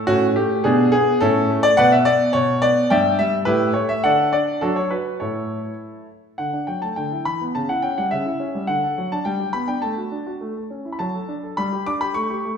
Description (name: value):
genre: classical-period piano sonatina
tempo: 105 BPM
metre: 2/4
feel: straight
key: D major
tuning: A4 = 440 Hz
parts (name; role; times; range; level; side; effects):
- clear grand piano; solo; 0.0-12.6 s; G2 to D6; -18 LUFS; equal; none
room: wet recital hall reverb, RT60 1.6 s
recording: heard from further back in the room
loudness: -18 LUFS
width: side -7 dB against mid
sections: 0.0-6.4 A section; 6.4-12.6 B section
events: none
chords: 0.0 A; 0.6 G#dim/B; 1.2 A; 1.8 Bm; 2.9 Em7/G; 3.5 A5; 4.0 D; 4.6 D/F#; 5.2 A; 6.4 D; 7.0 Em7/D; 7.6 C#dim; 8.7 D; 9.3 G; 9.8 D/A; 10.4 A; 11.0 D/F#; 11.6 G